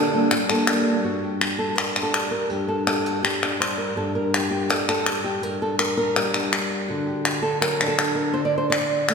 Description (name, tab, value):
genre	flamenco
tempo	164 BPM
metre	4/4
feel	straight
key	G harmonic minor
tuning	A4 = 440 Hz
part	flamenco guitar	melody	0.0-9.1 s	G2 to D5	-22 LUFS	equal	none
part	palmas hand claps	percussion	0.3-9.1 s	none	-24 LUFS	left 2 dB	none
room	wet concert hall reverb, RT60 2.2 s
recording	recorded in a church or concert hall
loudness	-20 LUFS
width	side -5 dB against mid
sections	0.0-1.0 A section; 1.0-9.1 B section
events	none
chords	0.0 Gmadd9; 6.9 D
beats	0.31 0.68 | 1.04 1.41 1.78 2.14 | 2.51 2.87 3.24 3.60 | 3.97 4.33 4.70 5.07 | 5.43 5.80 6.16 6.53 | 6.89 7.26 7.62 7.99 | 8.35 8.72 9.08